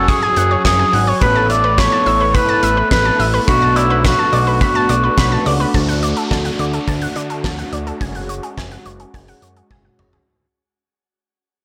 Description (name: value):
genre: synth-pop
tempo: 106 BPM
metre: 4/4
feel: straight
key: unclear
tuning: A4 = 440 Hz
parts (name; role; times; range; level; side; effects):
- mellow cor anglais; melody; 0.0-5.4 s; E4 to D5; -18 LUFS; equal; delay, shimmer reverb
- mellow synth brass; accompaniment; 0.0-10.2 s; F#3 to G#5; -24 LUFS; equal; chorus, shimmer reverb
- analog pluck; arpeggios; 0.0-10.3 s; G#4 to C#6; -25 LUFS; equal; chorus, delay, shimmer reverb
- fat analog bass; bass; 0.0-10.2 s; F#1 to D3; -22 LUFS; equal; none
- gated 80s drum kit; drums; 0.1-10.3 s; hi-hat, kick drum, snare drum, toms; -22 LUFS; equal; none
- downlifter; sound effects; 5.7-10.3 s; none; -33 LUFS; equal; none
room: moderate plate reverb, RT60 1.3 s, studio ambience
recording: blown-out, overdriven recording, overdrive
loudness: -15 LUFS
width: mono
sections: 0.0-5.7 A section; 5.7-10.3 B section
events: fade-out 5.7-10.3; drum fill 9.7-10.3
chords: 0.0 F#sus2; 1.2 Asus2; 3.5 Bm7; 5.7 D; 8.0 F#sus2